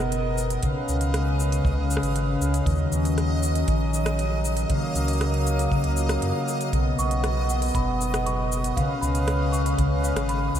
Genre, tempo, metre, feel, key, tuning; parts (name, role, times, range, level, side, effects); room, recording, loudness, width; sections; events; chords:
folktronica; 118 BPM; 4/4; straight; A4 = 445 Hz
pedal harmonium; sustained chords; 0.0-10.6 s; F#3 to E#5; -29 LUFS; right 1 dB
concert harp; arpeggios; 0.0-10.6 s; B2 to A#4; -27 LUFS; left 3 dB; low-pass filter, ping-pong delay
warm sub bass; bass; 0.0-10.6 s; F#1 to F#2; -26 LUFS; equal; tube saturation
organic electronic drum kit; drums; 0.0-10.6 s; cabasa, hi-hat, rim click; -33 LUFS; right 1 dB; overdrive
backwards swelling texture; texture; 0.0-10.6 s; D#5 to D#6; -35 LUFS; right 1 dB; built-in reverb
kick drum; drums; 0.6-9.9 s; -26 LUFS; right 1 dB
small celesta; second line; 7.0-10.6 s; E#5 to C#6; -31 LUFS; equal; lush chorus, analog delay
moderate huge ambient reverb, RT60 7.5 s; dreamy mix soaked in reverb; -21 LUFS; side -10 dB against mid
0.0-10.6 A section
filter sweep on harp 0.0-10.6
0.0 Bmaj7; 0.6 C#7; 2.7 D#m7; 4.7 F#maj7/C#; 6.7 Bmaj7; 8.8 C#7